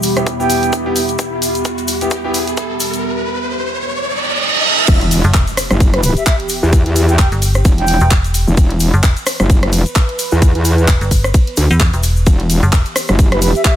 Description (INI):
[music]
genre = bass house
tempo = 130 BPM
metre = 4/4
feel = swing 57% on 16ths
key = E minor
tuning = A4 = 441 Hz
[part]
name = sweeping resonant pad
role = sustained chords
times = 0.0-13.8 s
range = E2 to B4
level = -25 LUFS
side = right 2 dB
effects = chorus, sidechain pumping
[part]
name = house drum kit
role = drums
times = 0.0-13.8 s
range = crash cymbal, handclaps, hi-hat, ride cymbal, rim click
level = -20 LUFS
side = equal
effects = none
[part]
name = tube shaker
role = percussion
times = 0.0-13.8 s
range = none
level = -25 LUFS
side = left 5 dB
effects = none
[part]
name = riser, reverse cymbal and impact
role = sound effects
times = 1.3-6.7 s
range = none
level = -19 LUFS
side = right 2 dB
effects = none
[part]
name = warbly tape-like pad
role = texture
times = 0.0-3.0 s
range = B3 to B5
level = -21 LUFS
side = left 1 dB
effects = chorus, built-in reverb, sidechain pumping
[part]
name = warm concert grand piano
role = stabs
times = 0.2-2.4 s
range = B3 to G4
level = -22 LUFS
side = equal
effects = sidechain pumping, dub echo
[part]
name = electronic kick drum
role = drums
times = 0.3-13.8 s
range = none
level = -12 LUFS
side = equal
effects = high-pass filter on kick
[part]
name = mellow concert flute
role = melody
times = 0.4-0.7, 5.9-8.1, 13.3-13.7 s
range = B4 to G5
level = -21 LUFS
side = right 2 dB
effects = dub echo
[part]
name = metallic wobble bass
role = bass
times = 4.9-13.5 s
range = E1 to E2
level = -13 LUFS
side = equal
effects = distortion, chorus, overdrive, sidechain pumping
[part]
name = metallic FM bass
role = bass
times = 5.2-12.8 s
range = E1 to E2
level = -13 LUFS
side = equal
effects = sidechain pumping
[sound]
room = little or no reverb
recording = none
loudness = -11 LUFS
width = side -11 dB against mid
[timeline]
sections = 0.0-4.9 A section; 4.9-13.8 B section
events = build-up 0.0-4.9; drum fill 1.2-3.0; riser 1.3-4.9; reverse cymbal 4.0-4.9; drop 4.9-13.8; impact 4.9-6.7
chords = 0.0 Em